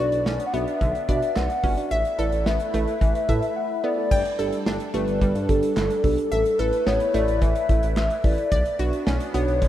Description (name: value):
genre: synth-pop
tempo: 109 BPM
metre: 4/4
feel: straight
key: unclear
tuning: A4 = 440 Hz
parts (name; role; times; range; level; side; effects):
- hollow clarinet-like synth lead; melody; 0.0-9.7 s; A4 to F#5; -25 LUFS; left 2 dB; chorus
- muted felt-like synth keys; accompaniment; 0.0-9.6 s; D4 to A5; -29 LUFS; right 5 dB; chorus
- phased analog pad; sustained chords; 0.0-9.7 s; G3 to B4; -32 LUFS; left 1 dB; phaser, chorus
- analog pluck; arpeggios; 0.0-9.7 s; D3 to G5; -33 LUFS; equal; chorus, analog delay
- smooth synth bass; bass; 0.0-9.7 s; G1 to B2; -26 LUFS; equal; none
- modern studio drum kit; drums; 0.1-9.7 s; crash cymbal, handclaps, hi-hat, kick drum, snare drum; -25 LUFS; equal; none
room: moderate lush hall reverb, RT60 2.6 s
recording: rough home demo mix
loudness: -20 LUFS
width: side -12 dB against mid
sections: 0.0-4.1 A section; 4.1-9.7 B section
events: synth keys fill 3.0-4.1; break 3.6-4.1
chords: 0.0 Bmadd9; 1.9 Asus2; 4.1 Gsus2; 6.3 Asus2; 8.5 Bmadd9